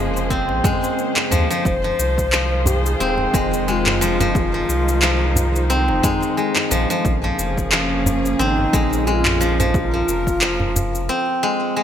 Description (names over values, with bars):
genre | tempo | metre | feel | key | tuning
organic downtempo | 89 BPM | 4/4 | swing 56% on 16ths | unclear | A4 = 437 Hz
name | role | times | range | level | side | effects
muted studio string section | sustained chords | 0.0-11.1 s | Db3 to C5 | -27 LUFS | equal | sidechain pumping
steel-string zither | arpeggios | 0.0-11.8 s | F3 to C4 | -21 LUFS | left 1 dB | digital delay
warm sub bass | bass | 0.0-11.1 s | Eb1 to Eb2 | -22 LUFS | equal | tube saturation, sidechain pumping
afro-pop drum kit | drums | 0.2-11.1 s | handclaps, shaker, toms | -22 LUFS | equal | studio ambience, gated reverb
electronic kick drum | drums | 0.3-10.4 s | none | -22 LUFS | equal | overdrive, studio ambience
djembe | percussion | 0.5-10.9 s | none | -26 LUFS | right 2 dB | none
breathy bass bansuri | melody | 1.6-11.1 s | Db4 to C5 | -24 LUFS | left 1 dB | digital delay
room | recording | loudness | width
moderate plate reverb, RT60 2.5 s | bright 1980s-style digital production | -16 LUFS | side -9 dB against mid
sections
0.0-11.8 A section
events
none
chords
0.0 Bbm9; 1.7 Fm7; 7.0 Bbm9